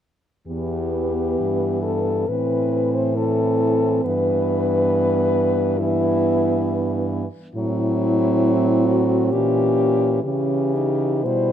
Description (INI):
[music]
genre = classical, lyrical piece for horn quartet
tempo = 68 BPM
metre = 4/4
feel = rubato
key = E minor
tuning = A4 = 441 Hz
[part]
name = mellow French horn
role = melody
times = 0.5-11.5 s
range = E4 to C5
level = -22 LUFS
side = left 6 dB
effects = none
[part]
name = mellow French horn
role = second line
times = 0.5-11.5 s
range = B3 to E4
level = -24 LUFS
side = right 8 dB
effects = none
[part]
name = warm French horn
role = accompaniment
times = 0.5-11.5 s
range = E3 to G3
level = -26 LUFS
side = left 1 dB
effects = none
[part]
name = warm French horn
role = bass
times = 0.5-11.5 s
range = E2 to C#3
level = -24 LUFS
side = right 2 dB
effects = none
[sound]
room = light reverb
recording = close, detailed microphones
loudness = -18 LUFS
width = side -10 dB against mid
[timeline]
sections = 0.5-11.5 A section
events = none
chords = 0.5 Em; 2.3 Am; 4.1 Em/G; 7.6 F#m7b5/A; 9.3 A#dim7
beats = | 0.48 1.40 2.29 3.16 | 4.05 4.93 5.80 6.67 | 7.56 8.44 9.32 10.24 | 11.26